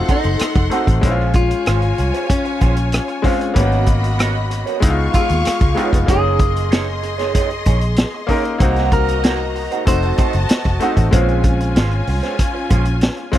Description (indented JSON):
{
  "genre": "lush 1970s-style soul",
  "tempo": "95 BPM",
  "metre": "4/4",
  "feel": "straight",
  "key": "unclear",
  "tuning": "A4 = 441 Hz",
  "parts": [
    { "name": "clean electric guitar", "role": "melody", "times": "0.0-11.4 s", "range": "Db4 to C5", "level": "-23 LUFS", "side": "left 2 dB", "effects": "none" },
    { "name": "clear studio string section", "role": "second line", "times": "0.0-13.4 s", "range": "Db4 to Db6", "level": "-25 LUFS", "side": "left 1 dB", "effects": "none" },
    { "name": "bright grand piano", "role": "accompaniment", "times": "0.0-13.4 s", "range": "Ab3 to C5", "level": "-23 LUFS", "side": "left 3 dB", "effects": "none" },
    { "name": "electric guitar through a small old amp", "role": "riff", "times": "0.1-13.4 s", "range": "Ab3 to Db5", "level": "-24 LUFS", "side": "right 9 dB", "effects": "wah, vibrato effect" },
    { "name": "vintage drum kit", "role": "drums", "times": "0.1-13.4 s", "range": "hi-hat, kick drum, rim click, snare drum", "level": "-17 LUFS", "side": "equal", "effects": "none" },
    { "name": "vintage muted fingered electric bass", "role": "bass", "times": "0.2-13.1 s", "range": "F1 to Eb2", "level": "-18 LUFS", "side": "equal", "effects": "none" }
  ],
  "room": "small room ambience",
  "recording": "dry, close 1970s-style studio recording",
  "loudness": "-14 LUFS",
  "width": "side -12 dB against mid",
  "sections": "0.0-13.4 A section",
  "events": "clean electric guitar solo 0.0-13.4",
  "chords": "0.0 F7b9; 1.0 Bbm9; 3.6 Abm11; 4.8 Db7; 6.1 Gb69; 8.6 Cm7b5; 9.9 F7b9; 11.1 Bbm9",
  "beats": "0.40 | 1.03 1.67 2.30 2.93 | 3.56 4.19 4.82 5.45 | 6.08 6.72 7.35 7.98 | 8.61 9.24 9.87 10.50 | 11.13 11.76 12.39 13.02"
}